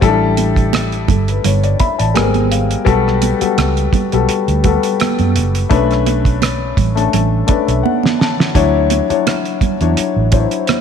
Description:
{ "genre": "lush 1970s-style soul", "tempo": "84 BPM", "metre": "4/4", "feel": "swing 54% on 16ths", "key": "D major", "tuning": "A4 = 440 Hz", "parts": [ { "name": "warm baby grand piano", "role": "accompaniment", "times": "0.0-10.8 s", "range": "F#3 to B5", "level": "-16 LUFS", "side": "left 8 dB", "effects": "none" }, { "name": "vintage muted fingered electric bass", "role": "bass", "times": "0.0-10.4 s", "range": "F#1 to F#2", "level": "-16 LUFS", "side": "right 2 dB", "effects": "none" }, { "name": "cloth-damped thuddy drum kit", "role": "drums", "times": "0.0-10.8 s", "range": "hi-hat, kick drum, rim click, snare drum", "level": "-18 LUFS", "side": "right 2 dB", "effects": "none" }, { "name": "congas", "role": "percussion", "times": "0.4-10.8 s", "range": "none", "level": "-22 LUFS", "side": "right 14 dB", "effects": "none" } ], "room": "moderate echo chamber reverb, RT60 2.1 s", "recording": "1960s-style stereo with parts hard left and right", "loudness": "-12 LUFS", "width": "side -7 dB against mid", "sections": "0.0-10.8 A section", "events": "grand piano fill 1.4-2.9, 7.1-8.5; drum fill 7.8-8.5", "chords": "0.0 A7sus4; 2.2 G#maj9; 2.9 Gmaj9/B; 5.7 Bm9; 8.5 Dmaj9", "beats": "| 0.02 0.73 1.44 2.15 | 2.86 3.57 4.28 4.99 | 5.70 6.41 7.12 7.83 | 8.54 9.25 9.96 10.67" }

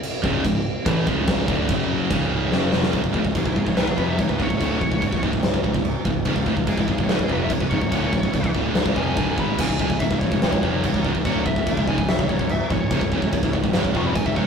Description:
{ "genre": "heavy metal", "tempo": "144 BPM", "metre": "4/4", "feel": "straight", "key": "unclear", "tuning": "A4 = 438 Hz", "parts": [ { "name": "big rock drum kit", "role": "drums", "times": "0.0-14.5 s", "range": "china cymbal, crash cymbal, kick drum, snare drum", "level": "-22 LUFS", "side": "equal", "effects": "none" }, { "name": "distorted electric guitar", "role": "riff", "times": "0.2-14.5 s", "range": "C#2 to A3", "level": "-31 LUFS", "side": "left 5 dB", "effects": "overdrive" }, { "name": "high-gain distorted guitar", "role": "riff", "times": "0.2-14.5 s", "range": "C#2 to A3", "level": "-28 LUFS", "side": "right 6 dB", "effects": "distortion" }, { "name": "thick fuzz guitar", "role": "riff", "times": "0.2-14.5 s", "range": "C#2 to A3", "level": "-27 LUFS", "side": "equal", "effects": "distortion" }, { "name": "modern bright picked electric bass", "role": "bass", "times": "0.2-14.5 s", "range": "C#1 to A1", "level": "-28 LUFS", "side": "equal", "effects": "none" }, { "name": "high-gain lead guitar", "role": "melody", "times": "3.4-14.5 s", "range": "E4 to C#6", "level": "-30 LUFS", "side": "left 3 dB", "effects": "distortion, tape echo" } ], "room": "light reverb", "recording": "rough rehearsal-room recording, tube saturation", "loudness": "-19 LUFS", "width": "side -6 dB against mid", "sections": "0.0-2.9 A section; 2.9-14.5 B section", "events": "half time 0.0-2.9; drum fill 2.5-2.9; lead electric guitar solo 2.9-14.5", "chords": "0.0 C#5; 1.7 F#5; 2.1 C#", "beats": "0.03 0.45 0.86 | 1.28 1.69 2.11 2.52 | 2.94 3.35 3.77 4.18 | 4.60 5.02 5.43 5.85 | 6.26 6.68 7.10 7.51 | 7.93 8.34 8.76 9.18 | 9.59 10.01 10.42 10.84 | 11.25 11.67 12.08 12.50 | 12.91 13.32 13.74 14.15" }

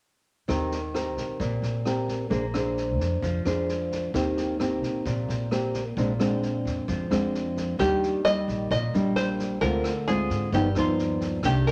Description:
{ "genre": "bossa nova", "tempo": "131 BPM", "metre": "4/4", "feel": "straight", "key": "Eb major", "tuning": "A4 = 438 Hz", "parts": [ { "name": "nylon-string guitar", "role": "accompaniment", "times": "0.5-11.7 s", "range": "G2 to C5", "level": "-29 LUFS", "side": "equal", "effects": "none" }, { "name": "upright bass", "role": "bass", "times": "0.5-11.7 s", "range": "G1 to Ab2", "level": "-33 LUFS", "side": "equal", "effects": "none" }, { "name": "swinging big-band drum kit", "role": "drums", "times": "0.5-11.7 s", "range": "kick drum, rim click, snare drum", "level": "-39 LUFS", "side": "equal", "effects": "none" }, { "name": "open-back banjo", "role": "melody", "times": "7.8-11.7 s", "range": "F4 to Eb5", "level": "-29 LUFS", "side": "equal", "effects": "none" } ], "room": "moderate studio reverb, RT60 0.8 s", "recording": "none", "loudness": "-26 LUFS", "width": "mono", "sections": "0.5-7.8 A section; 7.8-11.7 B section", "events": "none", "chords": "0.5 Eb6; 2.3 Bb9; 4.1 Eb6; 6.0 Bb9; 7.8 Ebmaj7; 9.6 Dm7b5; 10.5 Gaug7", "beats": "| 0.49 0.94 1.40 1.85 | 2.31 2.77 3.23 3.68 | 4.14 4.60 5.05 5.51 | 5.97 6.42 6.88 7.34 | 7.80 8.25 8.71 9.16 | 9.62 10.07 10.53 10.98 | 11.44" }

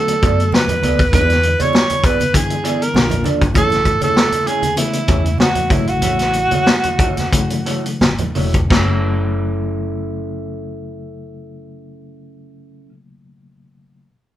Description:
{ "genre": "lush 1970s-style soul", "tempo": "84-99 BPM", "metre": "4/4", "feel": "swing 54% on 16ths", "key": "F# minor", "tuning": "A4 = 441 Hz", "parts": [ { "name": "breathy tenor saxophone", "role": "melody", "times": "0.0-8.0 s", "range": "E4 to C#5", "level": "-18 LUFS", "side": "right 2 dB", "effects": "none" }, { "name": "overdriven reed electric piano", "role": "accompaniment", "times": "0.0-14.1 s", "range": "C#3 to F#4", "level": "-24 LUFS", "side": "left 3 dB", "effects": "fast tremolo" }, { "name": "electric guitar through a small old amp", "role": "riff", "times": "0.1-12.9 s", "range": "A3 to D5", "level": "-25 LUFS", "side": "right 3 dB", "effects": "none" }, { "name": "vintage drum kit", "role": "drums", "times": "0.1-8.9 s", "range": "china cymbal, hi-hat, kick drum, snare drum", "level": "-17 LUFS", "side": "equal", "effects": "none" }, { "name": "congas", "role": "percussion", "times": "0.1-9.0 s", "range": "none", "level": "-24 LUFS", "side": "right 2 dB", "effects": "none" }, { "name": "vintage muted fingered electric bass", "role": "bass", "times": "0.2-12.9 s", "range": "E1 to F#2", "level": "-21 LUFS", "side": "equal", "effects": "none" } ], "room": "light reverb", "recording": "band playing live in one room", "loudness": "-14 LUFS", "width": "side -12 dB against mid", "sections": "0.0-8.7 A section; 8.7-11.6 B section", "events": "slowing down 3.6-8.7", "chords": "0.0 Bm7; 1.1 E7; 2.9 A#maj7; 3.6 Amaj7; 5.7 F#m7", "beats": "0.53 | 1.13 1.74 2.34 2.95 | 3.55 4.16 4.77 5.39 | 6.02 6.67 7.33 8.01 | 8.71 9.42 10.13 10.84" }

